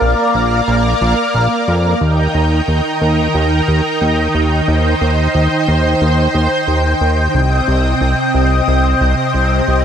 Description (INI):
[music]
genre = synthwave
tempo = 90 BPM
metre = 4/4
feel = straight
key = unclear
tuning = A4 = 441 Hz
[part]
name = analog string pad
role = sustained chords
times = 0.0-9.8 s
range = C3 to G5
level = -14 LUFS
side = equal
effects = ensemble chorus, shimmer reverb
[part]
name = fat analog bass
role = bass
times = 0.0-9.8 s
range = Bb1 to F2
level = -14 LUFS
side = equal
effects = none
[sound]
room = moderate plate reverb, RT60 3.1 s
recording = bright 1980s-style digital production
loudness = -12 LUFS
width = side -8 dB against mid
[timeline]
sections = 0.0-2.0 A section; 2.0-9.8 B section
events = filter sweep on analog synth pad 0.0-2.0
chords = 0.0 Bb; 2.0 Eb; 7.3 Cm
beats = 0.01 0.68 1.35 | 2.02 2.68 3.35 4.01 | 4.68 5.35 6.01 6.68 | 7.35 8.02 8.68 9.35